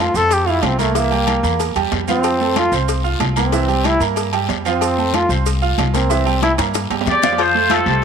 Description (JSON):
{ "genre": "latin, salsa", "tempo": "187 BPM", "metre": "4/4", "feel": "straight", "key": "F major", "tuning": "A4 = 440 Hz", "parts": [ { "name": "bright trombone", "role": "melody", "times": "0.0-6.5 s", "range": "A3 to A4", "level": "-19 LUFS", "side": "left 1 dB", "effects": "none" }, { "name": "clear baby grand piano", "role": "accompaniment", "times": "0.0-8.0 s", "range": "E3 to F6", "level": "-21 LUFS", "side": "right 11 dB", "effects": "none" }, { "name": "upright bass", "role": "bass", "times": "0.0-8.0 s", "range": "C2 to G2", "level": "-21 LUFS", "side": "left 1 dB", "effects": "none" }, { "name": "guiro", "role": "percussion", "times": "0.0-8.0 s", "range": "none", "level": "-28 LUFS", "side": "left 14 dB", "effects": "none" }, { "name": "congas", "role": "percussion", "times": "0.1-8.0 s", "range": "none", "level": "-28 LUFS", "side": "left 12 dB", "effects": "none" }, { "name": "maracas", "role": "percussion", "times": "0.1-7.4 s", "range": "none", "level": "-33 LUFS", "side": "right 14 dB", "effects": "none" }, { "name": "agogo bells and timbales", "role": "percussion", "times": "0.3-7.9 s", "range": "none", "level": "-26 LUFS", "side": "right 13 dB", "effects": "none" }, { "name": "cowbell and bongos", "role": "percussion", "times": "0.3-7.9 s", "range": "none", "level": "-25 LUFS", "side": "left 13 dB", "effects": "none" }, { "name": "bright trumpet section", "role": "melody", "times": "7.1-8.0 s", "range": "C4 to D5", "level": "-15 LUFS", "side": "left 2 dB", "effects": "none" }, { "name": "breathy baritone saxophone", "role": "second line", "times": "7.4-8.0 s", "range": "F3 to A3", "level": "-20 LUFS", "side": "left 10 dB", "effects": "none" } ], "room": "moderate spring reverb, RT60 1.6 s, studio ambience", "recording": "1960s-style stereo with parts hard left and right", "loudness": "-14 LUFS", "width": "side -7 dB against mid", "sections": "0.0-7.4 A section", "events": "trombone solo 0.0-7.4; drum fill 6.4-7.4", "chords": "0.0 F; 1.0 C7; 2.2 F; 3.5 C7; 4.8 F; 6.1 C7; 7.4 F", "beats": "0.31 0.63 | 0.95 1.27 1.60 1.92 | 2.24 2.56 2.88 3.20 | 3.53 3.85 4.17 4.49 | 4.81 5.13 5.46 5.78 | 6.10 6.42 6.74 7.06 | 7.39 7.71 8.03" }